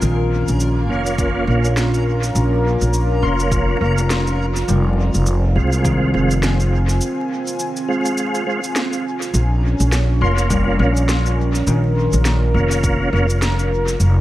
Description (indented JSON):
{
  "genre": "ambient dub",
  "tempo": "103 BPM",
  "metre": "4/4",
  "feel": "swing 58% on 16ths",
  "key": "Bb dorian",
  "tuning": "A4 = 445 Hz",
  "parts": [
    { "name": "warm analog pad", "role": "sustained chords", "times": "0.0-14.2 s", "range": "C4 to Ab5", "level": "-23 LUFS", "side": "right 1 dB", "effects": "chorus" },
    { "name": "concert harp", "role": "arpeggios", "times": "0.0-14.1 s", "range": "Eb3 to C6", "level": "-27 LUFS", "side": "left 4 dB", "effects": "analog delay" },
    { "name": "upright bass", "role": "bass", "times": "0.0-14.2 s", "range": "F1 to C2", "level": "-17 LUFS", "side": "equal", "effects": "tube saturation" },
    { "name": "electronic shaker and snare drum", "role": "drums", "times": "0.0-14.1 s", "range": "none", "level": "-26 LUFS", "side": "equal", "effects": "dub echo" },
    { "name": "backwards swelling texture", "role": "texture", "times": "0.0-9.4 s", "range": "Bb3 to Bb4", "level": "-32 LUFS", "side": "left 2 dB", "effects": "built-in reverb" },
    { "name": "tonewheel organ", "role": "stabs", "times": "0.9-13.3 s", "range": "Ab3 to F4", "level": "-24 LUFS", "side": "right 2 dB", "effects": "chorus vibrato, fast rotary speaker, dub echo" },
    { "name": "electronic kick drum", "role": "drums", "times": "1.2-6.0, 10.5-13.0 s", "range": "none", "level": "-22 LUFS", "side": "equal", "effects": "none" }
  ],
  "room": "little or no reverb",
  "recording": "echo-heavy mix, vinyl crackle",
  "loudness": "-15 LUFS",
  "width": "side -15 dB against mid",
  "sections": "0.0-9.3 A section; 9.3-14.2 B section",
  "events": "break 7.0-9.3",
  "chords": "0.0 Bbm; 4.7 Fm; 9.3 Bbm"
}